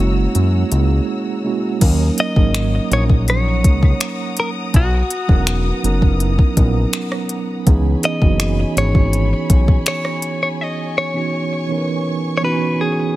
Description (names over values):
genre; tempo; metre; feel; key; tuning
contemporary R&B; 82 BPM; 4/4; straight; C# dorian; A4 = 439 Hz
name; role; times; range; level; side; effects
direct-recorded clean electric guitar; melody; 0.0-13.2 s; F#4 to D#5; -23 LUFS; left 2 dB; warbly pitch drift, digital delay
mellow tine electric piano; accompaniment; 0.0-13.2 s; E3 to C#5; -21 LUFS; right 4 dB; medium stereo tremolo
dark symphonic string section; sustained chords; 0.0-13.2 s; B3 to E6; -30 LUFS; left 2 dB; none
fat analog bass; bass; 0.0-9.8 s; E1 to F#2; -17 LUFS; equal; none
smooth R&B drum kit; drums; 0.3-10.4 s; crash cymbal, finger snaps, hi-hat, kick drum, rim click; -15 LUFS; equal; overdrive
room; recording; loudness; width
little or no reverb; none; -14 LUFS; side -16 dB against mid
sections
0.0-1.8 A section; 1.8-13.2 B section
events
break 1.1-1.8, 10.6-13.2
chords
0.0 F#7; 1.8 D#m7; 4.7 Bmaj7; 7.7 C#m7